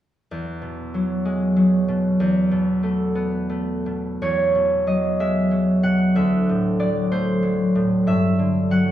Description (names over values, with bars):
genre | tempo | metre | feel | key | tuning
classical, solo harp piece | 62 BPM (dotted quarters) | 6/8 | rubato | E major | A4 = 441 Hz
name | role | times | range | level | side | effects
concert harp | solo | 0.3-8.9 s | D2 to F#5 | -18 LUFS | equal | none
room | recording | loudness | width
wet recital hall reverb, RT60 1.4 s | heard from further back in the room | -18 LUFS | side -12 dB against mid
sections
0.3-4.2 A section; 4.2-8.9 B section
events
none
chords
0.3 Eadd9; 2.2 B5/E; 4.2 Emaj9; 6.2 D9; 8.1 Gmaj7sus2